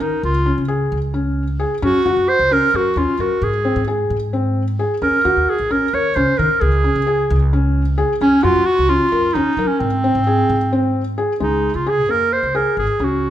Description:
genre	contemporary instrumental, chamber music in an uneven meter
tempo	263 BPM (eighths)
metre	7/8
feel	straight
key	Db major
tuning	A4 = 440 Hz
part	clear clarinet	melody	0.0-13.3 s	C4 to Db5	-17 LUFS	right 2 dB	none
part	felt-muted upright piano	arpeggios	0.0-13.3 s	Ab3 to Bb4	-20 LUFS	left 2 dB	none
part	upright bass	bass	0.0-13.3 s	Ab1 to Gb3	-21 LUFS	equal	none
room	moderate recital hall reverb, RT60 1.5 s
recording	minimal, uncompressed stereo recording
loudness	-15 LUFS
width	side -12 dB against mid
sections	0.0-11.4 A section; 11.4-13.3 B section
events	none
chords	0.2 Db; 1.8 Gb; 3.4 Ab; 5.0 Ebm7; 6.6 Db5; 8.2 Gb; 9.8 Ab; 11.4 Bbm7/Db

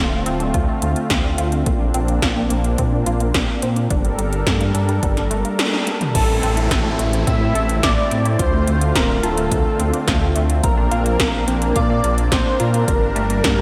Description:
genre	synthwave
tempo	107 BPM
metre	4/4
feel	straight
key	A phrygian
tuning	A4 = 440 Hz
part	lush unison pad	sustained chords	0.0-13.6 s	D3 to Bb4	-26 LUFS	equal	chorus, sidechain pumping
part	analog pluck	arpeggios	0.0-13.6 s	G3 to A4	-29 LUFS	equal	chorus, phaser, delay
part	dark detuned saw bass	bass	0.0-13.6 s	D1 to Bb2	-23 LUFS	equal	tube saturation, sidechain pumping
part	80s electronic pad drums	drums	0.3-13.6 s	crash cymbal, hi-hat, snare drum, toms	-25 LUFS	equal	gated reverb on snare and toms, studio reverb
part	electronic kick drum	drums	0.5-13.6 s	none	-24 LUFS	equal	studio reverb
part	soft supersaw	melody	6.1-13.6 s	A4 to E5	-26 LUFS	equal	cassette tape, tape echo
part	downlifter	sound effects	6.1-10.6 s	none	-32 LUFS	equal	none
part	soft synth bell	second line	6.2-13.6 s	A5 to E6	-33 LUFS	equal	none
room	moderate lush hall reverb, RT60 2.0 s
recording	dreamy mix soaked in reverb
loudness	-18 LUFS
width	mono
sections	0.0-6.1 A section; 6.1-13.6 B section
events	drum fill 5.6-6.1; band accent 5.6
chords	0.0 Dm7; 1.7 Bbadd9; 3.9 Gmadd9; 6.1 Am; 8.4 Dm7; 10.6 Bbadd9; 12.9 Gm

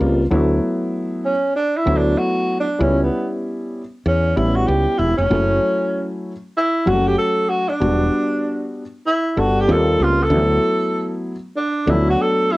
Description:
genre	hip hop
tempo	96 BPM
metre	4/4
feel	swing 62% on 16ths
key	unclear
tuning	A4 = 440 Hz
part	dark concert grand piano	accompaniment	0.0-12.6 s	E3 to A4	-20 LUFS	left 1 dB	cassette tape
part	woody fretless electric bass	bass	0.0-12.1 s	E1 to E2	-18 LUFS	equal	none
part	breathy tenor saxophone	melody	1.2-12.6 s	B3 to A4	-19 LUFS	right 1 dB	cassette tape
room	light reverb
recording	home recording on cassette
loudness	-16 LUFS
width	side -20 dB against mid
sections	0.0-12.6 A section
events	tenor saxophone solo 0.0-12.6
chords	0.3 D69; 2.8 A9/C# (rootless); 5.3 F#m7; 7.8 Em7; 9.7 D#69; 10.3 D69

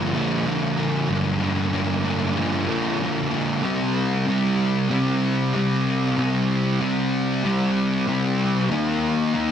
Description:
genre	rock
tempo	95 BPM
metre	4/4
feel	straight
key	C minor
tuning	A4 = 440 Hz
part	fuzz guitar	solo	0.0-9.5 s	G2 to Eb4	-20 LUFS	equal	distortion, wide subtle chorus
room	light reverb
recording	dense, heavily limited modern master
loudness	-20 LUFS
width	side -8 dB against mid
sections	0.0-3.6 A section; 3.6-9.5 B section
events	none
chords	0.0 Gm7; 3.6 C5; 8.7 Eb5

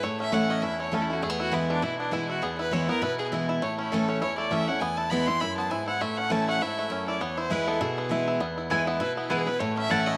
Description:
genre	bluegrass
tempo	201 BPM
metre	4/4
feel	swing 55% on 8ths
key	E major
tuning	A4 = 440 Hz
part	bluegrass banjo	melody	0.0-10.2 s	E3 to E4	-34 LUFS	equal	none
part	clear fiddle	melody	0.0-10.2 s	D4 to C6	-32 LUFS	equal	none
part	picked steel-string acoustic guitar	accompaniment	0.0-10.2 s	E2 to E4	-31 LUFS	equal	none
part	mandolin	stabs	8.7-10.0 s	A3 to A5	-33 LUFS	equal	none
room	moderate plate reverb, RT60 3.1 s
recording	none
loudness	-27 LUFS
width	mono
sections	0.0-10.2 A section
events	none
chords	0.0 A; 1.2 E; 3.6 A; 4.8 E; 6.0 A; 7.2 E; 9.6 A

